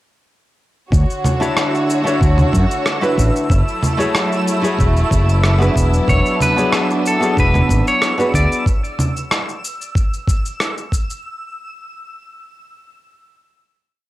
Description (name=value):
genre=sunset chillout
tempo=93 BPM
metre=4/4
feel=straight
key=unclear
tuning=A4 = 441 Hz
part: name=rich studio string section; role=sustained chords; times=0.9-8.6 s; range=D3 to C#5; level=-22 LUFS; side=equal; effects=cassette tape
part: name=fretless electric bass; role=bass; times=0.9-8.5 s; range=E1 to F#2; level=-15 LUFS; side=equal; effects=none
part: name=electronic kick drum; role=drums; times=0.9-11.1 s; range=none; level=-18 LUFS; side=equal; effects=cassette tape
part: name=electronic shaker, congas and rim click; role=drums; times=0.9-11.2 s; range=none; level=-21 LUFS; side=equal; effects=cassette tape
part: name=twinkling granular texture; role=texture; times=1.4-11.3 s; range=E6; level=-30 LUFS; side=right 1 dB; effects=built-in reverb, cassette tape
part: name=nylon-string guitar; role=accompaniment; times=1.4-8.6 s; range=A3 to C#5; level=-20 LUFS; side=equal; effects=auto-pan, cassette tape, analog delay
part: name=clean electric guitar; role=melody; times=6.1-8.6 s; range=A4 to D5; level=-19 LUFS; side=equal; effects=cassette tape, analog delay
room=light reverb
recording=home recording on cassette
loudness=-14 LUFS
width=side -16 dB against mid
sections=0.9-11.2 groove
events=none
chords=0.9 Dmaj7; 3.5 F#m7; 5.8 E13; 8.7 N.C.